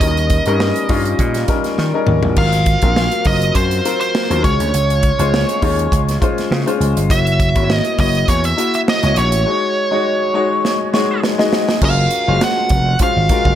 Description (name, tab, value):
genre	polished 1980s jazz-funk pop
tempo	102 BPM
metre	4/4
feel	swing 54% on 16ths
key	unclear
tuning	A4 = 441 Hz
part	nasal lead guitar with a parked wah	melody	0.0-13.6 s	C5 to Gb5	-18 LUFS	right 1 dB	overdrive
part	warm grand piano	accompaniment	0.0-13.6 s	Gb3 to Fb5	-19 LUFS	left 4 dB	lush chorus
part	vintage slap bass	bass	0.0-13.6 s	F1 to Eb3	-17 LUFS	right 1 dB	none
part	modern studio drum kit	drums	0.0-13.6 s	crash cymbal, hi-hat, kick drum, snare drum, toms	-19 LUFS	right 1 dB	gated reverb
room	light reverb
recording	none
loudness	-13 LUFS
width	side -10 dB against mid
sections	0.0-11.8 A section; 11.8-13.6 B section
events	drum fill 1.8-2.4, 10.6-11.8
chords	0.0 Eb7; 2.4 Ab13; 4.4 Dbmaj7; 7.1 Gb7; 9.5 Ab7sus4; 11.8 Gbmaj9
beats	| 0.01 0.60 1.19 1.78 | 2.37 2.96 3.55 4.14 | 4.74 5.33 5.92 6.51 | 7.10 7.69 8.28 8.87 | 9.46 10.05 10.64 11.23 | 11.82 12.41 13.00